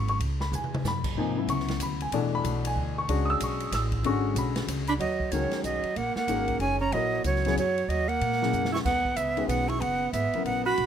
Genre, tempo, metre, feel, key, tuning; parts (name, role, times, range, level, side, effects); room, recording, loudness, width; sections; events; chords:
modal jazz; 187 BPM; 3/4; swing 62% on 8ths; C# phrygian; A4 = 440 Hz
warm baby grand piano; accompaniment; 0.0-10.8 s; B2 to E6; -29 LUFS; left 5 dB
upright bass; bass; 0.0-10.9 s; Gb1 to Bb2; -31 LUFS; right 1 dB
swinging big-band drum kit; drums; 0.1-10.9 s; crash cymbal, hi-hat, kick drum, ride cymbal, snare drum, toms; -36 LUFS; equal
breathy bright jazz flute; melody; 4.9-10.9 s; Db5 to Db6; -28 LUFS; equal
bright alto saxophone; second line; 4.9-10.9 s; Gb3 to Gb4; -30 LUFS; right 7 dB
light reverb; -25 LUFS; side -9 dB against mid
0.0-5.0 A section; 5.0-10.9 B section
drum fill 0.5-0.8, 8.5-8.9
0.0 C#m7; 5.0 Gbsus4